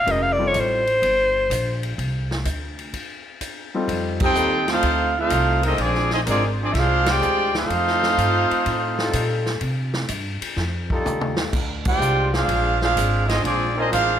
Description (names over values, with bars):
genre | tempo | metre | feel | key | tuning
jazz, big band swing | 126 BPM | 4/4 | swing 68% on 8ths | F major from 3.9 s | A4 = 440 Hz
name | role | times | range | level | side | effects
clear alto saxophone | melody | 0.0-2.0 s | C5 to F5 | -19 LUFS | left 1 dB | none
upright bass | bass | 0.0-14.2 s | F1 to C3 | -25 LUFS | equal | none
warm grand piano | accompaniment | 0.1-0.8, 3.7-4.3 s | G3 to Bb4 | -26 LUFS | left 3 dB | none
swinging big-band drum kit | drums | 0.1-14.1 s | crash cymbal, hi-hat, kick drum, ride cymbal, snare drum, toms | -28 LUFS | equal | none
clear trumpet section | melody | 4.2-14.2 s | C4 to G5 | -20 LUFS | right 1 dB | none
mellow trombone section | second line | 4.2-14.2 s | F3 to G4 | -27 LUFS | right 2 dB | none
warm trombone section | sustained chords | 4.3-14.2 s | G3 to Bb4 | -29 LUFS | left 2 dB | none
room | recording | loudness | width
moderate scoring stage reverb, RT60 1.7 s | none | -18 LUFS | side -9 dB against mid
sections
0.0-3.9 A section; 3.9-14.2 B section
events
alto saxophone solo 0.0-3.9; break 2.9-3.9; band accent 4.1, 7.0, 11.8; drum fill 11.1-11.5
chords
0.1 F9; 2.0 Csus2; 3.9 F9; 5.8 Bb9; 7.7 F9; 9.6 C5; 10.6 F9; 11.5 Bb9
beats
| 0.07 0.55 1.02 1.50 | 1.98 2.46 2.93 3.41 | 3.89 4.36 4.84 5.32 | 5.79 6.27 6.75 7.23 | 7.70 8.18 8.66 9.14 | 9.62 10.09 10.57 11.05 | 11.53 12.01 12.49 12.97 | 13.44 13.92